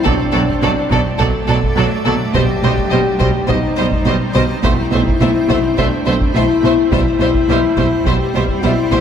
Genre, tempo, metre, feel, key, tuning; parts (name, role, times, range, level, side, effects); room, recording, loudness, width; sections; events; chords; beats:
cinematic, hybrid orchestral and electronic film score; 105 BPM; 4/4; straight; A4 = 440 Hz
clear chamber violin section; second line; 0.0-9.0 s; A4 to C5; -22 LUFS; equal
dark French horn section; sustained chords; 0.0-9.0 s; D4 to A4; -18 LUFS; left 5 dB
granular cloud pad; sustained chords; 0.0-9.0 s; F#3 to D5; -23 LUFS; right 1 dB; built-in reverb
dark symphonic violin section; melody; 0.1-9.0 s; D5 to E5; -26 LUFS; left 2 dB
clear symphonic viola section; accompaniment; 0.1-9.0 s; F#3 to A3; -23 LUFS; right 1 dB
dark symphonic cello section; bass; 0.1-9.0 s; B2; -20 LUFS; right 3 dB
rich symphonic double bass section; bass; 0.1-9.0 s; B1; -20 LUFS; right 4 dB
taiko ensemble; drums; 0.1-9.0 s; -22 LUFS; equal
moderate scoring stage reverb, RT60 1.5 s; -12 LUFS; side -8 dB against mid
0.0-9.0 A section
0.1 D; 2.3 Cm; 4.6 Am; 6.9 C
| 0.06 0.63 1.20 1.77 | 2.35 2.92 3.49 4.06 | 4.63 5.20 5.77 6.35 | 6.92 7.49 8.06 8.63